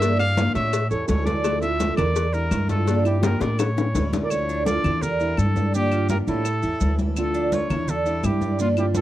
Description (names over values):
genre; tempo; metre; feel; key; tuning
latin, Cuban son and guajira; 168 BPM; 4/4; straight; D harmonic minor; A4 = 440 Hz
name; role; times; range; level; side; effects
breathy trumpet; melody; 0.0-9.0 s; F4 to F5; -27 LUFS; equal; none
nylon-string guitar; second line; 0.0-9.0 s; D4 to D5; -30 LUFS; right 4 dB; none
picked steel-string acoustic guitar; accompaniment; 0.0-9.0 s; D3 to G4; -29 LUFS; left 3 dB; none
Cuban tres; arpeggios; 0.0-9.0 s; C#4 to D5; -29 LUFS; right 4 dB; slapback echo
upright bass; bass; 0.0-9.0 s; D2 to A2; -24 LUFS; equal; none
congas; percussion; 0.0-9.0 s; none; -28 LUFS; equal; none
cowbell and bongos; percussion; 0.0-4.3 s; none; -28 LUFS; left 6 dB; none
maracas; percussion; 0.0-9.0 s; none; -40 LUFS; right 10 dB; none
claves; percussion; 0.2-8.9 s; none; -38 LUFS; left 9 dB; none
room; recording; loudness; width
small room ambience; dry, close 1970s-style studio recording; -20 LUFS; side -14 dB against mid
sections
0.0-4.3 A section; 4.3-9.0 B section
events
drum fill 3.2-4.3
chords
0.0 Gm7; 0.7 A7; 1.4 Dmadd9; 2.2 Em7b5; 2.9 Gm7; 3.6 A7; 4.3 Dmadd9; 5.0 Em7b5; 5.7 Gm7; 6.5 A7; 7.2 Dmadd9; 7.9 Em7